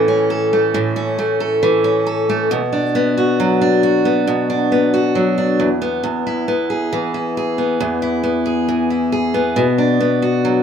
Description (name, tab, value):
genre	pop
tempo	68 BPM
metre	4/4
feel	straight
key	A major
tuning	A4 = 440 Hz
part	picked steel-string acoustic guitar	solo	0.0-10.6 s	E2 to A4	-14 LUFS	equal	none
room	light reverb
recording	rough home demo mix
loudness	-15 LUFS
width	side -8 dB against mid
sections	0.0-10.6 A section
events	none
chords	0.0 A; 2.5 Bm; 5.6 E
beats	0.74 1.62 | 2.51 3.39 4.27 5.15 | 6.04 6.92 7.80 8.68 | 9.56 10.45